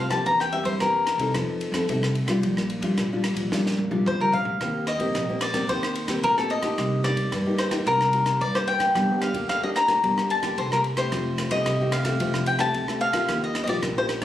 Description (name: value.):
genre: samba and choro.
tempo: 110 BPM.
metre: 4/4.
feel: straight.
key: unclear.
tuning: A4 = 439 Hz.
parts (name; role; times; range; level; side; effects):
cavaquinho; melody; 0.0-14.1 s; A4 to Bb5; -24 LUFS; left 2 dB; none.
nylon-string guitar; accompaniment; 0.0-14.2 s; G2 to A4; -27 LUFS; left 2 dB; none.
upright bass; bass; 0.0-14.2 s; F1 to F3; -29 LUFS; right 1 dB; none.
compact cocktail drum kit; drums; 0.1-14.2 s; kick drum, ride cymbal, rim click, snare drum, toms; -31 LUFS; right 1 dB; none.
room: moderate small room reverb, RT60 0.6 s.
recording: recorded on a phone in the room, club reverb.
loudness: -21 LUFS.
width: side -12 dB against mid.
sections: 0.0-4.6 A section; 4.6-14.2 B section.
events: cavaquinho solo 0.0-4.6; drum fill 3.5-4.6.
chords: 0.3 C7/E; 1.4 F7; 2.4 Bb6; 4.6 Eb6; 6.8 Cm7; 9.0 Gm; 11.1 Fadd9; 13.3 Ebadd9.